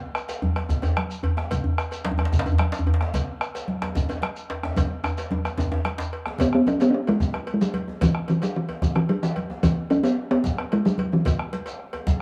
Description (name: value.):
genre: west african traditional, West African drum ensemble.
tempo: 148 BPM (dotted quarters).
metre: 12/8.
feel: straight.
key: E major pentatonic.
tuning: A4 = 443 Hz.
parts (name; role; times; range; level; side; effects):
bombo; percussion; 0.1-12.2 s; none; -30 LUFS; equal; none.
cowbell; percussion; 0.2-12.1 s; none; -39 LUFS; equal; none.
shekere; percussion; 0.2-12.2 s; none; -40 LUFS; equal; none.
djembe; percussion; 0.3-12.2 s; none; -36 LUFS; equal; none.
congas; percussion; 0.4-12.2 s; none; -34 LUFS; equal; none.
djembe; percussion; 0.4-6.1 s; none; -27 LUFS; equal; none.
talking drum; melody; 6.4-12.0 s; E3 to C#4; -24 LUFS; equal; none.
room: moderate spring reverb, RT60 2.4 s.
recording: small room ambience.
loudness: -24 LUFS.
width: mono.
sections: 0.0-6.4 A section; 6.4-12.2 B section.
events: drum fill 4.8-6.4.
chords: none.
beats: 0.29 0.70 1.10 | 1.51 1.92 2.33 2.74 | 3.14 3.55 3.96 4.36 | 4.77 5.18 5.58 5.99 | 6.39 6.80 7.21 7.61 | 8.02 8.42 8.83 9.23 | 9.64 10.04 10.45 10.85 | 11.26 11.66 12.06.